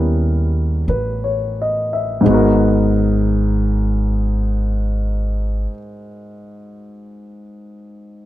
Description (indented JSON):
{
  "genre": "jazz ballad",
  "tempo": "43 BPM",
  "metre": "4/4",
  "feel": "swing 66% on 8ths",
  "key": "G# minor",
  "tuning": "A4 = 440 Hz",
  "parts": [
    { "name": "warm grand piano", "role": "accompaniment", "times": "0.0-8.3 s", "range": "G#2 to E5", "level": "-19 LUFS", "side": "left 1 dB", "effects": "none" },
    { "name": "upright bass", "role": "bass", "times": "0.0-5.7 s", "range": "G#1 to D#2", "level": "-18 LUFS", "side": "equal", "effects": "none" }
  ],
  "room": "little or no reverb",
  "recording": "close, detailed microphones",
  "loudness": "-15 LUFS",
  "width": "side -14 dB against mid",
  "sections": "0.0-2.3 A section; 2.3-7.9 B section",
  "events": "slowing down 0.0-2.3",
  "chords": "0.0 D#7b9b13; 2.3 G#m9"
}